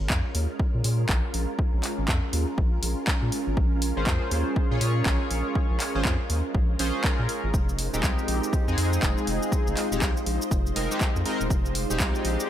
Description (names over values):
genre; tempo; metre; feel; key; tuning
deep house; 121 BPM; 4/4; swing 61% on 16ths; Bb minor; A4 = 440 Hz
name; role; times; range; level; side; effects
soft string machine; sustained chords; 0.0-12.5 s; Ab3 to Eb5; -34 LUFS; equal; phaser, ensemble chorus, sidechain pumping
round analog bass; bass; 0.0-12.4 s; Eb1 to Bb2; -27 LUFS; equal; sidechain pumping
warbly tape-like pad; texture; 0.5-12.5 s; Db4 to Bb5; -35 LUFS; right 2 dB; chorus, built-in reverb, sidechain pumping
electronic kick drum; drums; 0.1-12.1 s; none; -26 LUFS; equal; none
punchy analog drum machine; drums; 0.1-12.5 s; cabasa, handclaps, hi-hat; -31 LUFS; equal; none
chorused polysynth; stabs; 4.0-12.5 s; Ab3 to Db5; -30 LUFS; equal; sidechain pumping, tape echo
room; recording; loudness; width
light reverb, digital ambience; echo-heavy mix; -23 LUFS; side -11 dB against mid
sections
0.0-12.5 A section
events
none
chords
0.0 Bbm7; 7.5 Fm7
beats
0.10 0.59 1.09 | 1.59 2.08 2.58 3.08 | 3.57 4.07 4.56 5.06 | 5.55 6.05 6.55 7.04 | 7.54 8.03 8.53 9.03 | 9.52 10.02 10.51 11.01 | 11.50 12.00 12.50